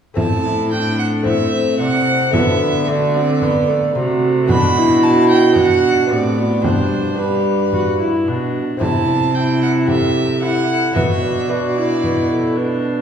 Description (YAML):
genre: classical, renaissance-style consort dance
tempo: 111 BPM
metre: 4/4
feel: straight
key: A dorian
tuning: A4 = 440 Hz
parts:
  - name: lute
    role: accompaniment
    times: 0.1-13.0 s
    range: G2 to B4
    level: -23 LUFS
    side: left 2 dB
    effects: none
  - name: warm violin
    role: second line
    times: 0.2-12.8 s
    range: B4 to B5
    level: -21 LUFS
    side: right 3 dB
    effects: none
  - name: warm viola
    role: accompaniment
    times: 0.2-13.0 s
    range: A3 to G4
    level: -20 LUFS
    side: equal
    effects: none
  - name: rich cello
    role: bass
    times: 0.2-13.0 s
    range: G2 to D3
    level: -20 LUFS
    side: right 2 dB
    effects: none
  - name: frame drum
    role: percussion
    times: 0.2-12.3 s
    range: none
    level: -23 LUFS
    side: right 1 dB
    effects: none
  - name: mellow baroque flute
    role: melody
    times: 1.2-13.0 s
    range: D4 to D5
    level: -21 LUFS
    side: right 1 dB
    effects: none
room: wet recital hall reverb, RT60 1.6 s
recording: recorded in a church or concert hall, studio reverb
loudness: -14 LUFS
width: side -8 dB against mid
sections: 0.2-13.0 A section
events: none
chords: 0.2 Am; 2.3 D; 4.5 Bm; 6.6 G; 8.8 C; 11.0 Bm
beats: | 0.18 0.72 1.26 1.80 | 2.34 2.88 3.42 3.95 | 4.49 5.03 5.56 6.10 | 6.64 7.18 7.73 8.27 | 8.81 9.35 9.89 10.43 | 10.97 11.50 12.04 12.57